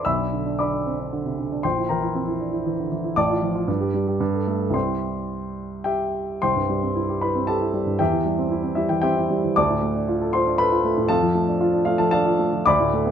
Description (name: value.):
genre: classical, virtuoso piano study.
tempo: 102-120 BPM.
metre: 3/4.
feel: rubato.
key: C major.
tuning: A4 = 440 Hz.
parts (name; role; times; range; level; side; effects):
warm baby grand piano; solo; 0.0-13.1 s; A1 to E6; -20 LUFS; equal; none.
room: moderate stone room reverb, RT60 1.2 s.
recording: minimal, uncompressed stereo recording.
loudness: -20 LUFS.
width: side -8 dB against mid.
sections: 0.0-6.4 A section; 6.4-13.1 B section.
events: none.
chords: 0.1 Bmadd11; 1.6 C7/Bb; 3.2 F/A; 3.7 Gsus2; 4.7 C; 8.0 C/E; 9.6 Dm; 11.1 Dm/F.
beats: | 0.06 0.59 1.12 | 1.64 2.15 2.66 | 3.17 3.68 4.20 | 4.74 5.29 5.85 | 6.42 6.96 7.48 | 8.00 8.52 9.04 | 9.58 10.09 10.60 | 11.10 11.61 12.12 | 12.66.